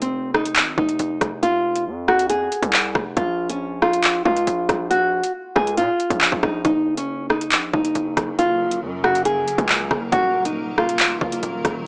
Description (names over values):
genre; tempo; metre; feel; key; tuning
hip hop, drill; 138 BPM; 4/4; half-time; F phrygian; A4 = 440 Hz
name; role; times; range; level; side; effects
nylon-string guitar; melody; 0.0-11.8 s; C4 to Ab4; -23 LUFS; equal; low-pass filter
distorted 808-style bass; bass; 0.0-11.9 s; Eb1 to Bb2; -32 LUFS; equal; distortion, transformer saturation
drill drum kit; drums; 0.0-11.7 s; handclaps, hi-hat, kick drum, rim click; -23 LUFS; equal; overdrive
granular cloud pad; sustained chords; 7.9-11.9 s; Db3 to Bb4; -36 LUFS; equal; built-in reverb
room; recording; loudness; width
light reverb; dry, gritty hardware recording, small speaker sound; -20 LUFS; mono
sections
0.0-11.9 A section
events
none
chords
0.0 Fm7; 3.2 Bbm; 6.6 Gb; 10.1 Ebm